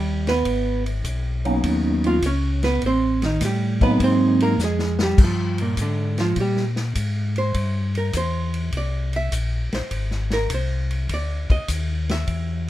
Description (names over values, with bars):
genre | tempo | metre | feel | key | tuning
soul jazz organ trio | 102 BPM | 4/4 | swing 68% on 8ths | unclear | A4 = 440 Hz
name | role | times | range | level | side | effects
archtop guitar, miked and amplified | accompaniment | 0.0-12.7 s | Bb2 to F5 | -23 LUFS | right 3 dB | none
mellow tonewheel organ | bass | 0.0-12.7 s | Ab1 to Bb2 | -24 LUFS | left 1 dB | slow rotary speaker
vintage drum kit | drums | 0.3-12.5 s | crash cymbal, hi-hat, kick drum, ride cymbal, snare drum | -24 LUFS | left 1 dB | none
percussive tonewheel organ | melody | 1.4-4.6 s | Gb3 to Eb4 | -21 LUFS | equal | fast rotary speaker
room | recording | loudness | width
light reverb | minimal, uncompressed stereo recording | -19 LUFS | side -14 dB against mid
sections
0.0-12.7 A section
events
hollow-body jazz guitar solo 0.0-12.7; drum fill 4.6-5.2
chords
0.5 Abm11; 2.8 Am7b5; 4.0 Ab9; 5.2 Gm7; 7.5 C7; 9.9 Ab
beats
| 0.46 1.05 1.64 2.23 | 2.82 3.41 4.00 4.59 | 5.18 5.77 6.36 6.96 | 7.54 8.14 8.73 9.32 | 9.91 10.50 11.09 11.69 | 12.28